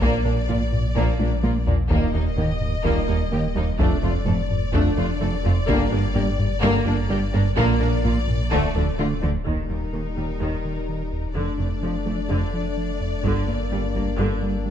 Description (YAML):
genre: cinematic, hybrid orchestral and electronic film score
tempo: 127 BPM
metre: 4/4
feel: straight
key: unclear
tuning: A4 = 440 Hz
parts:
  - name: clear studio violin section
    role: melody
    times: 0.0-14.7 s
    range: Bb4 to Eb5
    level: -32 LUFS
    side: left 6 dB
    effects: none
  - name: rich symphonic violin section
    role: second line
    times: 0.0-14.7 s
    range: A3 to A4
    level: -31 LUFS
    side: left 3 dB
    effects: none
  - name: clear symphonic viola section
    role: accompaniment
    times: 0.0-14.4 s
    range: D3 to Bb3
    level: -31 LUFS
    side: right 2 dB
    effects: none
  - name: mellow French horn section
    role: sustained chords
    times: 0.0-14.7 s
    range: G3 to Eb4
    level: -32 LUFS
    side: left 6 dB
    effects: none
  - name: warm trombone section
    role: sustained chords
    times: 0.0-8.7 s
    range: Bb2 to G3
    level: -35 LUFS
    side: right 3 dB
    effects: none
  - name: soft round pluck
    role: arpeggios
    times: 0.0-14.3 s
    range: D3 to Bb4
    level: -35 LUFS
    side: right 2 dB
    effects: none
  - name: round analog bass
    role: riff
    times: 0.0-14.7 s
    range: D2 to Bb3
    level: -27 LUFS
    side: right 1 dB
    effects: none
  - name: clear symphonic cello section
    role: bass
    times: 0.0-14.3 s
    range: Eb2 to D3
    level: -30 LUFS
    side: right 2 dB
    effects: none
  - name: clear symphonic double bass section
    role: bass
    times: 0.0-14.3 s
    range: F1 to Eb2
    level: -29 LUFS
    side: right 3 dB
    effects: none
  - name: warm sub bass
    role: bass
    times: 0.0-14.7 s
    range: D1 to Bb1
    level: -28 LUFS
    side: left 1 dB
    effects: none
  - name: taiko ensemble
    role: drums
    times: 0.0-10.4, 13.2-14.2 s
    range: none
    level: -27 LUFS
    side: left 1 dB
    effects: none
room: moderate scoring stage reverb, RT60 2.0 s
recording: dark, warm production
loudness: -20 LUFS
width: side -9 dB against mid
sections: 0.0-9.5 A section; 9.5-14.7 B section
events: drum fill 1.2-1.9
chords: 0.0 Bb; 1.9 Eb; 3.8 Dm/F; 5.7 Gm; 7.6 Bb; 8.5 Dm; 9.5 Eb; 11.4 Dm/F; 13.2 Gm